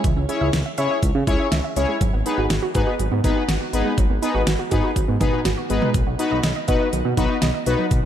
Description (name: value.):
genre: synth-pop.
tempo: 122 BPM.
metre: 4/4.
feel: straight.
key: unclear.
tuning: A4 = 440 Hz.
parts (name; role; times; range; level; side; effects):
wide unison pluck; arpeggios; 0.0-8.0 s; D#3 to E5; -26 LUFS; right 6 dB; tape echo.
smooth synth bass; bass; 0.0-8.0 s; G#1 to C#3; -24 LUFS; equal; none.
pop drum kit; drums; 0.0-8.0 s; hi-hat, kick drum, snare drum, toms; -23 LUFS; equal; none.
analog synth brass; accompaniment; 0.3-7.9 s; B3 to C#5; -23 LUFS; left 3 dB; chorus.
room: moderate plate reverb, RT60 2.0 s.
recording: dreamy mix soaked in reverb.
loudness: -18 LUFS.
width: side -10 dB against mid.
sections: 0.0-8.1 A section.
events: none.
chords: 0.0 C#m; 2.0 G#m7; 5.9 B.